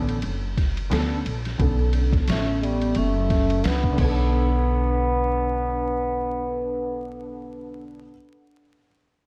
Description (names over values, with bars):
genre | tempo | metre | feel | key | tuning
hip hop, jazz-hop | 88 BPM | 4/4 | swing 57% on 16ths | B minor | A4 = 439 Hz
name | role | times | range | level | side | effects
dark concert grand piano | accompaniment | 0.0-8.1 s | D3 to C#5 | -34 LUFS | equal | ensemble chorus
upright bass | bass | 0.0-8.1 s | F#1 to D2 | -27 LUFS | equal | none
trip hop sampler-style drum kit | drums | 0.1-4.2 s | crash cymbal, hi-hat, kick drum, ride cymbal, snare drum | -29 LUFS | equal | none
trombone with cup mute | melody | 2.3-7.8 s | G3 to B3 | -29 LUFS | equal | delay
vibraphone with soft mallets | second line | 2.3-8.1 s | B3 to D4 | -32 LUFS | equal | none
room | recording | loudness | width
moderate lush hall reverb, RT60 2.2 s | dreamy mix soaked in reverb, vinyl crackle | -23 LUFS | mono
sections
0.0-4.3 A section; 4.3-7.1 B section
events
none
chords
0.0 Bm9